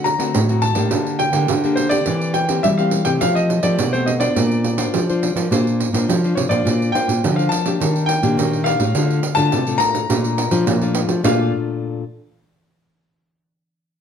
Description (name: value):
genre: samba and choro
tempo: 105 BPM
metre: 4/4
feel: straight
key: Bb major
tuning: A4 = 440 Hz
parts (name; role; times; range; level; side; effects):
- clear concert grand piano; melody; 0.0-11.5 s; C5 to Bb5; -22 LUFS; left 2 dB; plate reverb
- nylon-string guitar; accompaniment; 0.0-12.0 s; A2 to C5; -22 LUFS; left 5 dB; none
- nylon-string guitar; bass; 0.0-11.5 s; A2 to G3; -20 LUFS; right 1 dB; none
- pandeiro; percussion; 0.1-11.4 s; none; -23 LUFS; right 7 dB; none
room: moderate studio reverb, RT60 0.9 s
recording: none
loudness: -16 LUFS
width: side -8 dB against mid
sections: 0.0-6.7 A section; 6.7-11.2 B section; 11.2-13.5 C section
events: none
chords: 0.0 D7; 0.9 Gm/D; 2.1 C7/E; 3.2 Fadd9; 4.4 Bbadd9; 7.8 Ebmaj7; 9.0 Dm; 10.1 Bbmaj7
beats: 0.35 0.93 1.50 | 2.07 2.65 3.22 3.79 | 4.37 4.94 5.51 6.09 | 6.66 7.23 7.81 8.38 | 8.95 9.53 10.10 10.67 | 11.24 11.81